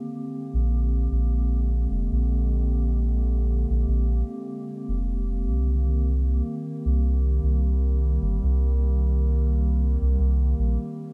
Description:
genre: ambient dub.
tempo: 76 BPM.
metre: 4/4.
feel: swing 54% on 16ths.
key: C minor.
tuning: A4 = 440 Hz.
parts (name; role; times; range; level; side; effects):
warbly tape-like pad; sustained chords; 0.0-11.1 s; D3 to G4; -33 LUFS; equal; chorus, built-in reverb.
soft dub sub bass; bass; 0.5-10.8 s; F1 to C2; -24 LUFS; equal; none.
room: little or no reverb.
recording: dark, warm production.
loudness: -24 LUFS.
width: mono.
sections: 0.0-11.1 A section.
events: none.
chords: 0.0 Bb13; 5.5 Cm7.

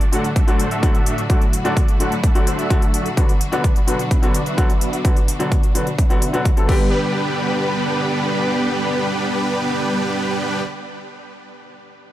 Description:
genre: EDM, festival progressive house.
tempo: 128 BPM.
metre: 4/4.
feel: straight.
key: G major.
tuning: A4 = 440 Hz.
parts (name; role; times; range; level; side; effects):
clear symphonic string section; sustained chords; 0.0-10.6 s; A2 to B4; -26 LUFS; equal; sidechain pumping.
dense compressed supersaw; riff; 0.0-10.6 s; G3 to F#5; -23 LUFS; right 1 dB; sidechain pumping, low-pass filter, tape echo.
big-room dance drum kit; drums; 0.0-6.8 s; crash cymbal, hi-hat; -30 LUFS; left 1 dB; overdrive.
clear baby grand piano; accompaniment; 0.1-10.6 s; D3 to A4; -24 LUFS; left 2 dB; vintage 12-bit sampler grit, sidechain pumping, tape echo.
electronic kick drum; drums; 0.4-6.8 s; none; -16 LUFS; equal; overdrive.
room: little or no reverb.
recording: none.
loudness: -16 LUFS.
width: side -14 dB against mid.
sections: 0.0-6.9 A section; 6.9-10.7 B section.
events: filter sweep on supersaw synth 0.0-6.9.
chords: 0.0 D; 3.2 Bm; 6.7 G.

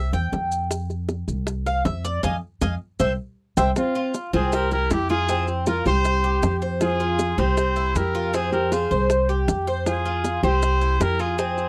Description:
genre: latin, Cuban son and guajira.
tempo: 157 BPM.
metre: 4/4.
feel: straight.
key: F minor.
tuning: A4 = 440 Hz.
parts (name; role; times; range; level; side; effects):
Cuban tres; arpeggios; 0.0-11.7 s; C4 to Ab5; -28 LUFS; equal; none.
upright bass; bass; 0.0-11.7 s; C2 to F2; -27 LUFS; equal; none.
bongos; percussion; 0.1-11.7 s; none; -30 LUFS; equal; none.
maracas; percussion; 0.1-11.7 s; none; -41 LUFS; equal; none.
warm trumpet; melody; 3.8-11.7 s; F4 to C5; -28 LUFS; equal; slapback echo.
nylon-string guitar; second line; 3.8-11.7 s; C4 to Ab4; -29 LUFS; equal; none.
room: light reverb.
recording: dry, close 1970s-style studio recording.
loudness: -23 LUFS.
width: mono.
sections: 0.0-3.8 A section; 3.8-11.7 B section.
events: Cuban tres solo 0.0-3.8; band accent 2.2-3.8; drum fill 3.0-3.8.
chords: 0.0 C; 0.7 F5; 2.2 Fm7; 3.0 C; 3.8 F5; 4.5 C; 5.3 F5; 6.0 C5; 6.8 Fm; 7.6 C7; 8.3 Fm; 9.1 C5; 9.9 Fm; 10.6 C.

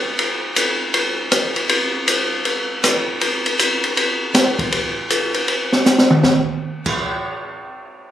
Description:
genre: jazz.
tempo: 158 BPM.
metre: 4/4.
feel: swing 64% on 8ths.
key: none.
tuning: none.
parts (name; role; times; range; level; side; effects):
open jazz drum kit; drums; 0.2-6.9 s; crash cymbal, hi-hat, kick drum, ride cymbal, rim click, snare drum, toms; -16 LUFS; equal; none.
room: moderate studio reverb, RT60 0.8 s.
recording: recorded on a phone in the room, club reverb, lossy compression artefacts.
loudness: -16 LUFS.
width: side -11 dB against mid.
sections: 0.0-6.2 A section; 6.2-8.1 B section.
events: drum fill 5.9-6.2.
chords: none.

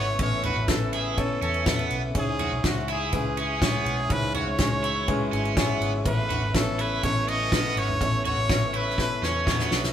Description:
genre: piano-driven pop.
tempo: 123 BPM.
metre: 4/4.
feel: straight.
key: unclear.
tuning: A4 = 441 Hz.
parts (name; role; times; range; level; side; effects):
brilliant trumpet; melody; 0.0-9.7 s; F#4 to D#5; -29 LUFS; equal; none.
dark upright piano; accompaniment; 0.0-9.9 s; G#2 to G#5; -30 LUFS; left 2 dB; none.
tonewheel organ; sustained chords; 0.0-9.9 s; C#3 to E4; -39 LUFS; right 1 dB; none.
overdriven electric guitar; riff; 0.0-9.8 s; B3 to F#4; -32 LUFS; right 5 dB; none.
vintage muted fingered electric bass; bass; 0.0-9.9 s; G#1 to E2; -31 LUFS; equal; none.
unplugged drum kit; drums; 0.2-9.9 s; kick drum, ride cymbal, snare drum, toms; -27 LUFS; equal; none.
room: moderate stone room reverb, RT60 1.2 s.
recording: band playing live in one room.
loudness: -22 LUFS.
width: side -10 dB against mid.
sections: 0.0-9.9 A section.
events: upright piano fill 5.1-6.1; drum fill 9.0-9.9.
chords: 0.0 Aadd9; 2.1 C#m; 6.1 Aadd9.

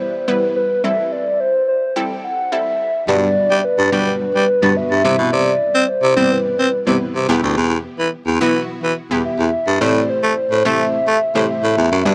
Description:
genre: dance-pop.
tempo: 107 BPM.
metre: 4/4.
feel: straight.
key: unclear.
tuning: A4 = 440 Hz.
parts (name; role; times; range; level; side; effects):
hollow clarinet-like synth lead; melody; 0.0-12.1 s; B4 to G5; -20 LUFS; equal; chorus, digital delay.
unison pluck; accompaniment; 0.0-12.1 s; G3 to D5; -24 LUFS; equal; none.
breathy baritone saxophone; bass; 3.1-12.1 s; D2 to C4; -19 LUFS; equal; none.
room: moderate lush hall reverb, RT60 2.7 s.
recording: dark, warm production, high-pass filter.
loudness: -17 LUFS.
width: mono.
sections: 0.0-3.1 A section; 3.1-12.1 B section.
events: build-up 0.0-3.1; drop 3.1-12.1.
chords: 0.0 Em; 0.8 Am7; 3.1 Gmaj7; 5.0 Cmaj7; 7.3 Em; 9.8 Am7.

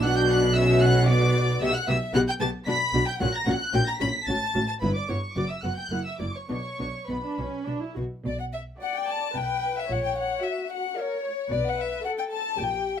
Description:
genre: quick classical-period movement for string orchestra.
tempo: 111 BPM.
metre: 3/4.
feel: rubato.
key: B minor.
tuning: A4 = 439 Hz.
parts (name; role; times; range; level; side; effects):
warm studio violin section; melody; 0.0-13.0 s; C#4 to B6; -30 LUFS; equal; none.
warm chamber violin section; second line; 0.0-13.0 s; B4 to B5; -30 LUFS; left 4 dB; none.
dark chamber viola section; accompaniment; 0.0-13.0 s; A#3 to D5; -28 LUFS; left 2 dB; none.
warm chamber cello section; bass; 0.0-13.0 s; F#2 to B2; -30 LUFS; right 2 dB; none.
warm chamber double bass section; bass; 0.0-13.0 s; F#1 to B1; -29 LUFS; right 2 dB; none.
room: light reverb.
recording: none.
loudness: -23 LUFS.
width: side -9 dB against mid.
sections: 0.0-8.2 A section; 8.2-13.0 B section.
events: none.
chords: 0.0 Bm; 1.6 Gmaj13/B; 2.7 Bm; 3.2 F#/A#; 4.3 F#m/A; 4.8 Em/G; 5.4 B5/F#; 5.9 F#7; 6.5 Bm; 9.3 Em/B; 9.9 F#/A#; 11.5 B5.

